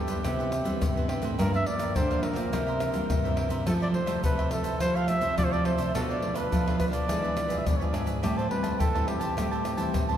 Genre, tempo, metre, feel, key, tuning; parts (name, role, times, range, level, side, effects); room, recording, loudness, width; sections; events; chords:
samba and choro; 105 BPM; 4/4; straight; C major; A4 = 440 Hz
breathy trumpet; melody; 0.0-10.2 s; G4 to F5; -31 LUFS; equal
nylon-string guitar; accompaniment; 0.0-10.2 s; G2 to G4; -34 LUFS; left 2 dB
nylon-string guitar; bass; 0.0-10.2 s; F2 to G3; -30 LUFS; right 2 dB
cavaquinho; accompaniment; 0.1-10.2 s; D4 to A5; -36 LUFS; right 4 dB
egg shaker, pandeiro, surdo and tamborim; percussion; 0.1-10.2 s; -30 LUFS; left 1 dB
wet cathedral reverb, RT60 4.9 s; recorded in a church or concert hall; -25 LUFS; side -10 dB against mid
0.0-10.2 A section
0.0 Cmaj9; 1.4 Gm7; 2.5 C9; 3.7 Fmaj9; 5.9 Bm7b5; 7.1 E7b9; 8.2 Am7